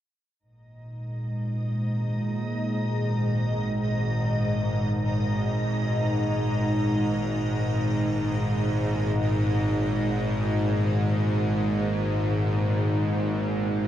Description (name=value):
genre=dark ambient drone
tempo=free time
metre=none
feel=none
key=unclear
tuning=A4 = 440 Hz
part: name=sweeping resonant pad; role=sustained chords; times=0.4-13.9 s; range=Bb2 to Eb4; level=-28 LUFS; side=equal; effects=chorus
part: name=bowed-like drone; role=drone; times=1.6-13.9 s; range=Ab1 to Ab2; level=-26 LUFS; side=equal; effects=built-in reverb
part: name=icy glass pad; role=texture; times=1.1-13.9 s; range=Eb4 to Eb5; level=-34 LUFS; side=left 1 dB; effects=chorus, built-in reverb
room=wet cathedral reverb, RT60 5.7 s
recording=worn, warbling old tape, cassette tape, warbly pitch drift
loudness=-23 LUFS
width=side -11 dB against mid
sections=0.4-13.9 A section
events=fade-out on analog synth pad 0.4-13.9; fade-out on ambient pad 0.4-13.9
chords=0.4 Absus2